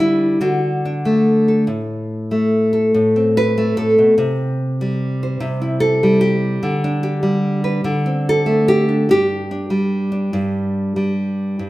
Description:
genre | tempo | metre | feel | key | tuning
folk, solo fingerstyle acoustic guitar | 49 BPM (dotted quarters) | 6/8 | rubato | unclear | A4 = 440 Hz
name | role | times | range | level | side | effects
nylon-string guitar | solo | 0.0-11.7 s | G2 to C5 | -15 LUFS | equal | none
room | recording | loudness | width
wet large studio reverb, RT60 1.4 s | band playing live in one room | -15 LUFS | side -17 dB against mid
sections
0.0-11.6 A section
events
none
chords
0.4 D; 1.7 Am; 4.2 C; 6.6 G/D; 7.9 D5; 9.1 G5

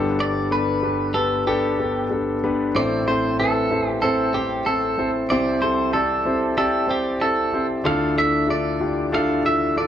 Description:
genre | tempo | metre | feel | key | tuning
pop | 94 BPM | 4/4 | straight | A minor | A4 = 440 Hz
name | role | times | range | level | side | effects
warm concert grand piano | accompaniment | 0.0-9.9 s | G1 to D5 | -21 LUFS | left 1 dB | none
clean electric guitar | melody | 0.2-9.9 s | G4 to F5 | -23 LUFS | right 1 dB | none
room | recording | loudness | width
moderate plate reverb, RT60 2.8 s | dark, warm production | -19 LUFS | side -10 dB against mid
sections
0.0-9.9 A section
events
none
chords
0.0 Gadd9; 2.7 Am; 5.3 C; 7.9 Dmadd9

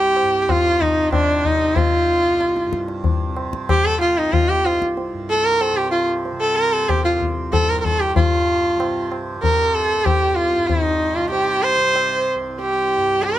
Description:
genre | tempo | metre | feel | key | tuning
indian classical, Hindustani | 94 BPM | 5/4 | straight | C raga bhimpalasi | A4 = 437 Hz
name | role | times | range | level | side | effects
clear sarangi | melody | 0.0-13.4 s | D4 to C5 | -17 LUFS | right 1 dB | none
tanpura | drone | 0.0-13.4 s | C2 to C3 | -29 LUFS | right 2 dB | none
tabla | percussion | 0.2-13.4 s | none | -22 LUFS | left 3 dB | none
room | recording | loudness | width
little or no reverb | close, detailed microphones | -16 LUFS | side -12 dB against mid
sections
0.0-8.2 A section; 8.2-13.4 B section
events
none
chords
none

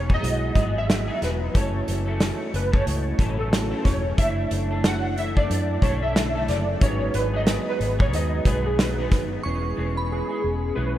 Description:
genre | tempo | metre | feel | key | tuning
indie pop, bedroom pop | 91 BPM | 4/4 | swing 60% on 16ths | E major | A4 = 440 Hz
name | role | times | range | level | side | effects
warbly lo-fi synth keys | melody | 0.0-11.0 s | G#4 to F#5 | -28 LUFS | right 1 dB | ensemble chorus, analog delay
electric guitar at the edge of break-up | accompaniment | 0.0-11.0 s | F#2 to A4 | -32 LUFS | left 3 dB | analog chorus, vibrato effect
vintage muted fingered electric bass | bass | 0.0-11.0 s | E1 to F#2 | -26 LUFS | equal | none
loose indie drum kit | drums | 0.1-9.3 s | hi-hat, kick drum, snare drum | -24 LUFS | equal | none
percussive tonewheel organ | accompaniment | 0.2-11.0 s | D3 to F#5 | -32 LUFS | right 4 dB | chorus vibrato, slow rotary speaker, cassette tape
glassy synth bell | second line | 9.4-10.4 s | B5 to C#6 | -33 LUFS | right 3 dB | analog chorus, analog delay
room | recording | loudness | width
light reverb, small room ambience | none | -21 LUFS | side -12 dB against mid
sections
0.0-9.4 A section; 9.4-11.0 B section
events
synth keys solo 0.0-9.4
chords
0.0 Emaj9; 1.5 F#m7; 4.2 Bm11/F#; 6.8 G#m7; 9.4 E6

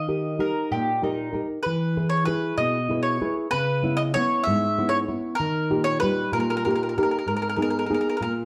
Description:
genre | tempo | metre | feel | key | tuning
italian folk | 64 BPM (dotted quarters) | 6/8 | straight | unclear | A4 = 440 Hz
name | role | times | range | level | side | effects
mandolin | melody | 0.0-8.3 s | A#4 to E5 | -28 LUFS | equal | plate reverb
nylon-string guitar | accompaniment | 0.0-8.4 s | G#2 to B4 | -27 LUFS | equal | none
mandolin | second line | 0.4-1.5 s | D#4 to A#4 | -30 LUFS | equal | none
room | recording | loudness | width
wet studio reverb, RT60 0.6 s | heard from further back in the room | -24 LUFS | mono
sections
0.0-8.4 A section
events
none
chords
0.0 D#; 1.6 E; 3.5 C#m7; 5.4 D#; 7.3 G#m

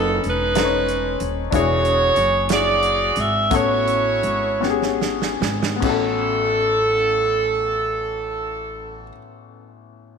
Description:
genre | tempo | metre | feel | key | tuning
slow gospel | 46-63 BPM (dotted quarters) | 6/8 | straight | A major | A4 = 439 Hz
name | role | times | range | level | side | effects
bright saxophone section | melody | 0.0-9.1 s | C#4 to E5 | -19 LUFS | right 2 dB | slapback echo
warm upright piano | accompaniment | 0.0-10.2 s | A1 to C#5 | -25 LUFS | left 12 dB | none
upright bass | bass | 0.0-9.1 s | D#1 to A1 | -27 LUFS | right 1 dB | none
natural country drum kit | drums | 0.2-6.0 s | crash cymbal, hi-hat, kick drum, snare drum | -26 LUFS | right 7 dB | none
room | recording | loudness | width
moderate echo chamber reverb, RT60 2.4 s | 1960s-style stereo with parts hard left and right | -17 LUFS | side -6 dB against mid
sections
0.0-5.8 A section; 5.8-10.2 B section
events
slowing down 1.5-5.8; drum fill 4.6-5.8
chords
0.0 B9; 1.5 E9; 3.5 A69

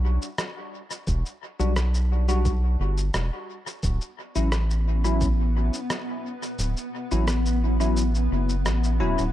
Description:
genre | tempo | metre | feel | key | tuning
ambient dub | 87 BPM | 4/4 | straight | unclear | A4 = 439 Hz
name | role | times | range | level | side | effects
round analog bass | bass | 0.0-9.3 s | D1 to B1 | -23 LUFS | equal | none
electronic shaker and rim click | drums | 0.2-9.3 s | none | -33 LUFS | equal | small room ambience, dub echo
electronic kick drum | drums | 1.1-5.4 s | none | -27 LUFS | equal | small room ambience
bell-like tine electric piano | stabs | 1.6-9.2 s | F#3 to F#4 | -31 LUFS | left 2 dB | analog chorus, dub echo
granular cloud pad | sustained chords | 4.8-9.3 s | B3 | -30 LUFS | left 2 dB | built-in reverb
room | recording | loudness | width
little or no reverb | none | -22 LUFS | side -13 dB against mid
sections
0.0-9.3 A section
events
kick drops out 6.6-9.3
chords
0.0 Em (rootless); 3.8 Dmaj9 (rootless)

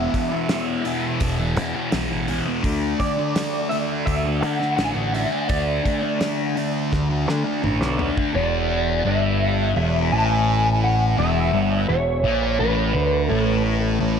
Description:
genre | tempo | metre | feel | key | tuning
psychedelic rock | 84 BPM | 4/4 | straight | unclear | A4 = 440 Hz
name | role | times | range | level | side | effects
electric slide guitar | melody | 0.0-13.6 s | B4 to A5 | -25 LUFS | equal | ensemble chorus, tape echo
thick fuzz guitar | riff | 0.0-14.2 s | E2 to D4 | -22 LUFS | left 1 dB | distortion, phaser
growling picked electric bass | bass | 0.0-14.2 s | E1 to D3 | -24 LUFS | equal | overdrive
damped 70s drum kit | drums | 0.1-8.3 s | hi-hat, kick drum, snare drum, toms | -27 LUFS | equal | none
room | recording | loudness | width
moderate plate reverb, RT60 2.3 s | dreamy mix soaked in reverb | -19 LUFS | side -7 dB against mid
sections
0.0-8.3 A section; 8.3-14.2 B section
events
drum fill 6.9-8.3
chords
0.0 E5; 2.6 D5; 8.3 E5

